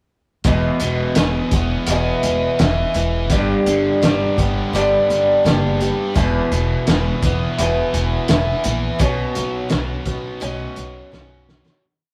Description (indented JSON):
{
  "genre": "folk rock and heartland rock",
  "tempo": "84 BPM",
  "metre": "4/4",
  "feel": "straight",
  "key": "unclear",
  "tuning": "A4 = 443 Hz",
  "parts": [
    { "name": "upright bass", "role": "bass", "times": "0.4-11.6 s", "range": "E1 to B1", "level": "-25 LUFS", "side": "equal", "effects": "none" },
    { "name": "cloth-damped thuddy drum kit", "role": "drums", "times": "0.4-11.8 s", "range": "hi-hat, kick drum, snare drum", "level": "-23 LUFS", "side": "equal", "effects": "none" },
    { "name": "picked acoustic archtop guitar", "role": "accompaniment", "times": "0.5-11.8 s", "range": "E2 to G#4", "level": "-23 LUFS", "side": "equal", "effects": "none" },
    { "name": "biting overdriven guitar", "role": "riff", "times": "0.5-11.8 s", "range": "E2 to E4", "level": "-25 LUFS", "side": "equal", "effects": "none" }
  ],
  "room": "moderate small room reverb, RT60 0.5 s",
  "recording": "rough rehearsal-room recording, warm saturation",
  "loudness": "-18 LUFS",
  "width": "mono",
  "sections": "0.5-11.8 verse",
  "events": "fade-out 9.0-11.8; drum fill 11.1-11.8",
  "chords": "0.5 E; 3.3 G; 6.2 E; 9.0 Bsus2",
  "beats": "| 0.46 1.17 1.89 2.60 | 3.31 4.03 4.74 5.45 | 6.16 6.87 7.58 8.29 | 9.00 9.71 10.42 11.12"
}